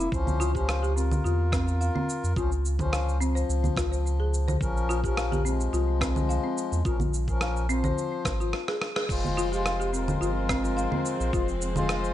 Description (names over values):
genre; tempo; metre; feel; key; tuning
organic downtempo; 107 BPM; 4/4; straight; F harmonic minor; A4 = 443 Hz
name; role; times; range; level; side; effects
hand-pumped harmonium; accompaniment; 0.0-12.1 s; F3 to E5; -32 LUFS; left 4 dB; sidechain pumping, ping-pong delay
folk marimba with medium hard mallets; arpeggios; 0.0-12.0 s; C4 to F5; -31 LUFS; left 1 dB; ping-pong delay
warm sub bass; bass; 0.0-12.1 s; F1 to F2; -27 LUFS; equal; none
dusty soul sampler-style drum kit; drums; 0.0-12.1 s; cabasa, congas, crash cymbal, rim click; -32 LUFS; right 1 dB; none
electronic kick drum; drums; 0.1-11.5 s; none; -31 LUFS; equal; none
dark studio string section; sustained chords; 9.1-12.1 s; F3 to C5; -34 LUFS; equal; sidechain pumping
room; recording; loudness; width
light reverb; nothing above 10.5 kHz; -24 LUFS; side -12 dB against mid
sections
0.0-9.1 A section; 9.1-12.1 B section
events
drum fill 8.5-9.1; band accent 9.0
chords
0.1 Dbmaj7; 4.6 Bbm; 9.1 Fm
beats
| 0.12 0.69 1.25 1.81 | 2.37 2.93 3.49 4.05 | 4.61 5.17 5.73 6.29 | 6.85 7.42 7.98 8.54 | 9.10 9.66 10.22 10.78 | 11.34 11.90